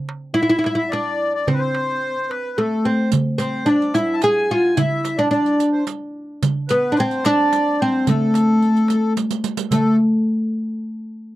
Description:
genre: Arabic maqam ensemble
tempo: 109 BPM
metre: 3/4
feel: straight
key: A maqam nahawand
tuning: A4 = 439 Hz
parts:
  - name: darbuka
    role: percussion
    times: 0.1-10.0 s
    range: none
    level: -23 LUFS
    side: right 2 dB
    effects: none
  - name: oud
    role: melody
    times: 0.3-10.0 s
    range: A3 to G#4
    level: -18 LUFS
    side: equal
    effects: none
  - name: accordion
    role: second line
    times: 0.4-10.0 s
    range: A4 to A5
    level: -24 LUFS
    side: left 2 dB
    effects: none
  - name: riq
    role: percussion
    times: 3.1-10.0 s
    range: none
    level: -29 LUFS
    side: right 12 dB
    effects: none
room: little or no reverb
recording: dry, close 1970s-style studio recording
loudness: -16 LUFS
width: side -16 dB against mid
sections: 0.0-9.7 A section; 9.7-11.4 B section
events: drum fill 9.2-9.7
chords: none

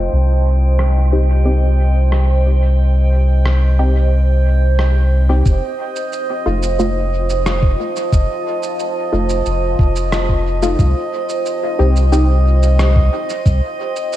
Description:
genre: ambient dub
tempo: 90 BPM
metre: 4/4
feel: straight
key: F mixolydian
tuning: A4 = 441 Hz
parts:
  - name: deep dark ambient pad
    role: sustained chords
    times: 0.0-14.2 s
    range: F4 to A5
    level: -22 LUFS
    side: right 2 dB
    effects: chorus, built-in reverb
  - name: filtered dub chord stab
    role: stabs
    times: 0.0-12.3 s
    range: A3 to G4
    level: -23 LUFS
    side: left 1 dB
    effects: chorus, dub echo
  - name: soft dub sub bass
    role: bass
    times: 0.0-13.6 s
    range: F1 to C2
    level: -13 LUFS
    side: equal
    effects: none
  - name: drifting glass-harmonics texture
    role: texture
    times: 0.0-14.2 s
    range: Eb5 to G5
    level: -27 LUFS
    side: right 1 dB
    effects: chorus, built-in reverb
  - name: electronic rim click and cabasa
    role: drums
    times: 0.8-14.2 s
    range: none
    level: -27 LUFS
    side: equal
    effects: dub echo
  - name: electronic kick drum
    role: drums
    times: 5.5-13.6 s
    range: none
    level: -14 LUFS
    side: equal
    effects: none
room: light reverb, digital ambience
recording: low-pass filter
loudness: -13 LUFS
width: side -13 dB against mid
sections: 0.0-5.5 A section; 5.5-14.2 B section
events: filter sweep on drum 0.0-5.5; filter sweep on synth stab 0.0-5.5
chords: 0.1 Cm; 5.5 F7; 10.8 Cm

